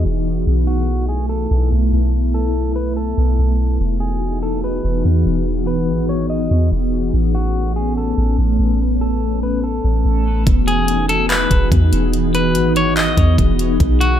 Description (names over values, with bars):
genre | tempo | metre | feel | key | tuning
hip hop, atmospheric cloud-rap | 144 BPM | 4/4 | half-time | E major | A4 = 441 Hz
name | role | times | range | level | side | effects
electric guitar at the edge of break-up | melody | 0.0-14.2 s | F#4 to D#5 | -24 LUFS | left 1 dB | low-pass filter, ping-pong delay
glassy FM pad | sustained chords | 0.0-14.2 s | E3 to G#4 | -20 LUFS | left 1 dB | ensemble chorus, built-in reverb, sidechain pumping
soft 808-style bass | bass | 0.0-14.2 s | E1 to E2 | -17 LUFS | equal | none
smooth R&B drum kit | drums | 10.5-14.1 s | handclaps, hi-hat, kick drum | -17 LUFS | equal | none
room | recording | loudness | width
little or no reverb | low-pass filter | -15 LUFS | side -10 dB against mid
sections
0.0-10.5 A section; 10.5-14.2 B section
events
filter sweep 0.0-10.5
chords
0.5 B7sus4; 3.8 Emaj7; 7.1 Aadd9; 10.5 Emaj7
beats
0.05 | 0.47 0.88 1.30 1.72 | 2.13 2.55 2.97 3.38 | 3.80 4.22 4.63 5.05 | 5.47 5.88 6.30 6.72 | 7.13 7.55 7.97 8.38 | 8.80 9.22 9.63 10.05 | 10.47 10.88 11.30 11.72 | 12.13 12.55 12.97 13.38 | 13.80